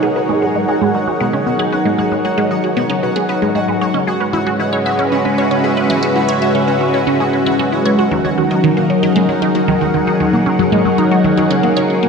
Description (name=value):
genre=ambient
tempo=115 BPM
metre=4/4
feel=straight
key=G# minor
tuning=A4 = 440 Hz
part: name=lush unison pad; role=sustained chords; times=0.0-12.1 s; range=G#3 to F#5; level=-16 LUFS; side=equal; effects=chorus, phaser
part: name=concert harp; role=arpeggios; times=0.0-12.1 s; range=F#3 to G#4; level=-20 LUFS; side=left 2 dB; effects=auto-pan, tape echo
part: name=resonant blip pluck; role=riff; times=0.0-12.1 s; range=D#3 to E5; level=-17 LUFS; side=right 1 dB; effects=phaser, tape echo
part: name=pulsing gated texture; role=texture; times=0.0-12.1 s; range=F#4 to F#5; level=-24 LUFS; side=equal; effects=chorus, built-in reverb
room=wet echo chamber reverb, RT60 2.5 s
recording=echo-heavy mix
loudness=-12 LUFS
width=side -5 dB against mid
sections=0.0-12.1 A section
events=fade-in on harp 0.0-12.1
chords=0.0 G#m7; 3.8 C#m7; 8.0 D#m7